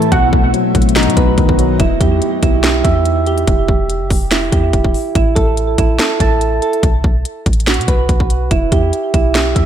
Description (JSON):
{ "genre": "hip hop, trap", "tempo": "143 BPM", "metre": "4/4", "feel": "half-time", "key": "E harmonic minor", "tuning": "A4 = 440 Hz", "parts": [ { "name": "bell-like tine electric piano", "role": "accompaniment", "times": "0.0-1.8 s", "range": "A2 to E4", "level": "-16 LUFS", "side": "left 6 dB", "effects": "low-pass filter" }, { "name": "granular cloud pad", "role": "sustained chords", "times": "0.0-1.8 s", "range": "F#3 to D#4", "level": "-21 LUFS", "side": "left 1 dB", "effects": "built-in reverb" }, { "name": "soft electric-piano-like synth keys", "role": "arpeggios", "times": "0.0-9.7 s", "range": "E4 to A5", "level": "-17 LUFS", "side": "right 5 dB", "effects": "chorus, tremolo, low-pass filter, tape echo" }, { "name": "trap drum kit", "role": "drums", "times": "0.0-9.7 s", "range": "finger snaps, hi-hat, kick drum, snare drum", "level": "-15 LUFS", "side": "equal", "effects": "none" }, { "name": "warbly dusty pluck", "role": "second line", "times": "0.1-1.3 s", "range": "F#5", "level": "-19 LUFS", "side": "right 3 dB", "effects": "chorus, tape echo" }, { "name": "clean 808-style bass", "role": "bass", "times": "0.1-9.7 s", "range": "E1 to B2", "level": "-16 LUFS", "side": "equal", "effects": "none" } ], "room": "light reverb", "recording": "none", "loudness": "-11 LUFS", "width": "side -9 dB against mid", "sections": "0.0-1.8 A section; 1.8-9.7 B section", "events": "none", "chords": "0.1 B; 1.8 Em; 5.2 A5; 6.8 B5; 8.5 Em", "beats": "| 0.12 0.54 0.96 1.38 | 1.80 2.22 2.64 3.06 | 3.48 3.89 4.31 4.73 | 5.15 5.57 5.99 6.41 | 6.83 7.25 7.67 8.09 | 8.51 8.93 9.35" }